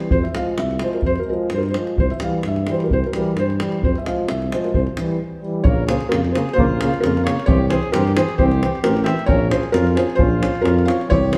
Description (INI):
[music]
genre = balkan folk, Balkan brass band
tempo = 131 BPM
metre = 2/4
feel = swing 55% on 16ths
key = unclear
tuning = A4 = 441 Hz
[part]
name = felt-muted upright piano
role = melody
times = 0.0-11.4 s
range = Bb4 to G5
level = -25 LUFS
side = equal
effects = none
[part]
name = clear trombone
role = accompaniment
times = 0.0-11.4 s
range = G3 to Db4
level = -30 LUFS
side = equal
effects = none
[part]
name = warm euphonium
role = accompaniment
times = 0.0-11.4 s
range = Db3 to F3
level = -28 LUFS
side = equal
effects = none
[part]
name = davul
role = percussion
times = 0.0-11.4 s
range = none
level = -25 LUFS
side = equal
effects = none
[part]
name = mellow tuba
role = bass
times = 0.1-11.3 s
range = A1 to G2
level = -24 LUFS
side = equal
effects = none
[part]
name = mellow trumpet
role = second line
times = 5.6-11.4 s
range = F4 to E5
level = -30 LUFS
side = equal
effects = none
[sound]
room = wet large studio reverb, RT60 1.4 s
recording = band playing live in one room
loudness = -19 LUFS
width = mono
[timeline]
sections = 0.0-5.7 A section; 5.7-11.4 B section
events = break 5.2-5.7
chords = 0.1 Fm; 2.0 C; 3.8 Fm; 4.7 C; 5.7 Bbm; 7.5 C; 9.3 Bbm